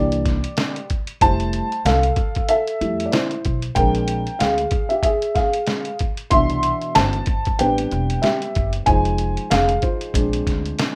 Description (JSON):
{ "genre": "hip hop, jazz-hop", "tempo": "94 BPM", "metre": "4/4", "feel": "swing 58% on 16ths", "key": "unclear", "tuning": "A4 = 440 Hz", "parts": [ { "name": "dark upright piano", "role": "accompaniment", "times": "0.0-11.0 s", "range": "B2 to C6", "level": "-22 LUFS", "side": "equal", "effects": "none" }, { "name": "upright bass", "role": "bass", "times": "0.0-10.7 s", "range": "E1 to F2", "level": "-26 LUFS", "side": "equal", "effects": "none" }, { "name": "trip hop sampler-style drum kit", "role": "drums", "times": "0.1-11.0 s", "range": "hi-hat, kick drum, snare drum", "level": "-25 LUFS", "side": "equal", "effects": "none" } ], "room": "wet small room reverb, RT60 0.6 s", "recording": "rough home demo mix", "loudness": "-20 LUFS", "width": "mono", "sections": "0.0-11.0 A section", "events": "upright piano solo 0.0-11.0", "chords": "0.0 C9; 1.2 Fmaj7; 3.8 Bb9; 6.3 Cmaj9; 7.6 Am11; 8.9 Fm7; 10.1 Bb9" }